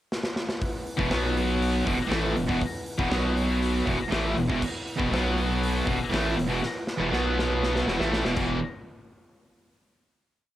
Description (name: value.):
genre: hard rock.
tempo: 120 BPM.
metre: 4/4.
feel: straight.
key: unclear.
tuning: A4 = 440 Hz.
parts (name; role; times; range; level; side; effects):
big rock drum kit; drums; 0.1-8.5 s; crash cymbal, hi-hat, kick drum, snare drum; -31 LUFS; equal; cassette tape.
percussive tonewheel organ; sustained chords; 0.6-8.6 s; B3 to F#5; -39 LUFS; equal; none.
cranked stack guitar; riff; 1.0-8.6 s; E2 to B3; -29 LUFS; right 5 dB; overdrive, cassette tape.
high-gain distorted guitar; riff; 1.0-8.6 s; E2 to B3; -30 LUFS; left 5 dB; distortion, cassette tape.
raw garage guitar; riff; 1.0-8.6 s; E2 to B3; -31 LUFS; left 1 dB; overdrive, cassette tape.
saturated sub bass; bass; 1.0-8.6 s; E1 to B1; -30 LUFS; equal; none.
room: light reverb.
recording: home recording on cassette.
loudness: -24 LUFS.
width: side -13 dB against mid.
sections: 0.0-0.6 pickup bar; 0.6-8.6 riff; 8.6-10.6 final hit.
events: drum fill 0.1-0.6, 6.6-8.6.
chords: 0.0 N.C.; 0.6 E5; 1.1 B5; 1.9 E5; 3.1 B5; 3.9 E5; 5.1 B5; 5.9 E5; 7.1 B5; 7.9 E5; 8.6 N.C..